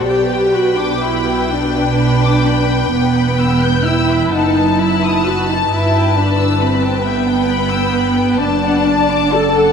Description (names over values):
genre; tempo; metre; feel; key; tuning
classical, slow romantic movement for string orchestra; 40-46 BPM (dotted quarters); 6/8; rubato; G major; A4 = 440 Hz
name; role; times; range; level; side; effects
clear studio violin section; melody; 0.0-9.7 s; G5 to A5; -22 LUFS; left 8 dB; none
dark studio violin section; second line; 0.0-9.7 s; B4 to G6; -20 LUFS; left 2 dB; none
dark studio viola section; accompaniment; 0.0-9.7 s; B3 to A4; -16 LUFS; equal; none
warm studio cello section; bass; 0.0-9.7 s; E2 to B2; -22 LUFS; right 4 dB; none
warm studio double bass section; bass; 0.0-9.7 s; E1 to B1; -20 LUFS; right 4 dB; none
room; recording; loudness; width
wet cathedral reverb, RT60 5.5 s; in a vast, echoing space; -12 LUFS; side -6 dB against mid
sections
0.0-9.7 A section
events
none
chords
0.1 G/B; 2.9 Em; 4.3 B7/F#; 5.7 Em/G; 8.4 D/F#